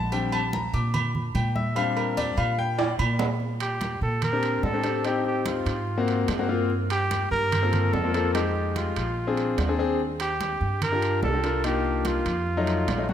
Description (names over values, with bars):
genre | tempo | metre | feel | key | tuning
Afro-Cuban jazz | 146 BPM | 4/4 | straight | Bb major | A4 = 440 Hz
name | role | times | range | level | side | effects
clear baby grand piano | accompaniment | 0.0-13.1 s | Gb3 to D6 | -27 LUFS | left 4 dB | none
upright bass | bass | 0.0-13.1 s | Bb1 to Bb2 | -28 LUFS | right 1 dB | none
agogo bells and timbales | percussion | 0.1-13.1 s | none | -33 LUFS | right 6 dB | none
congas | percussion | 0.1-13.1 s | none | -36 LUFS | equal | none
mellow trumpet | melody | 3.6-13.1 s | F4 to Bb4 | -28 LUFS | right 2 dB | none
room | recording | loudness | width
moderate lush hall reverb, RT60 2.6 s | rough home demo mix | -23 LUFS | side -9 dB against mid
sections
0.0-3.4 A section; 3.4-13.1 B section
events
grand piano solo 0.0-3.4; drum fill 2.8-3.4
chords
0.1 Bb6; 5.0 Am7b5; 5.9 Ab9; 6.7 Gm11; 8.3 Fm9; 9.2 Bb9; 10.0 Ebmaj9; 11.6 Cm11; 12.5 F7b9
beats
| 0.12 0.53 0.94 1.35 | 1.76 2.17 2.58 2.99 | 3.40 3.81 4.22 4.63 | 5.05 5.46 5.87 6.28 | 6.70 7.11 7.52 7.93 | 8.34 8.76 9.17 9.58 | 9.99 10.40 10.82 11.23 | 11.64 12.05 12.47 12.88